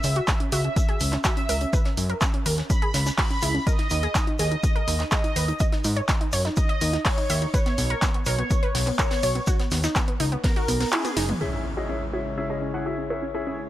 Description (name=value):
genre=progressive house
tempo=124 BPM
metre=4/4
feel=straight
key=C# dorian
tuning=A4 = 440 Hz
part: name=wide unison lead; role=melody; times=0.0-11.4 s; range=G#4 to B5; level=-30 LUFS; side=right 1 dB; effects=lush chorus, tape echo
part: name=wide unison pluck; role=arpeggios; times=0.0-13.7 s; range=B3 to E5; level=-30 LUFS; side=right 1 dB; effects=sidechain pumping, tape echo
part: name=fat analog bass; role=bass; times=0.0-11.3 s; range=F#1 to G#2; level=-25 LUFS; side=equal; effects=sidechain pumping
part: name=deep house drum kit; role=drums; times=0.0-13.7 s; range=handclaps, hi-hat, toms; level=-29 LUFS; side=equal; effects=overdrive, low-pass filter on hats, low-pass filter on snare, low-pass filter on toms
part: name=warm soul drum kit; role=drums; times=0.0-11.3 s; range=hi-hat, shaker, snare drum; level=-35 LUFS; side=left 1 dB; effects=sidechain pumping on hats, high-pass filter on hats, high-pass filter on snare, sidechain pumping on perc, high-pass filter on perc, high-pass filter on room
part: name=electronic kick drum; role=drums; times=0.3-10.5 s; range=none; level=-24 LUFS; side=equal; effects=none
part: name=evolving wavetable pad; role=sustained chords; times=11.8-13.7 s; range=C#3 to C#5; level=-34 LUFS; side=left 2 dB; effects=chorus, built-in reverb, phaser, sidechain pumping
part: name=bright baby grand piano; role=stabs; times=11.4-13.6 s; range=C#4 to F#5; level=-30 LUFS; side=left 2 dB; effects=sidechain pumping, low-pass filter, tape echo
part: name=impact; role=sound effects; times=11.4-13.3 s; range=none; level=-34 LUFS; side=equal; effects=none
room=little or no reverb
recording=none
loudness=-21 LUFS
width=side -14 dB against mid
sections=0.0-11.4 A section; 11.4-13.7 B section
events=kick drops out 10.9-11.4; drum fill 10.9-11.4; band accent 10.9; impact 11.4-13.3; filter sweep on synth pluck 11.4-13.7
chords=0.0 C#m; 3.7 N.C.; 7.5 Badd9; 11.4 C#m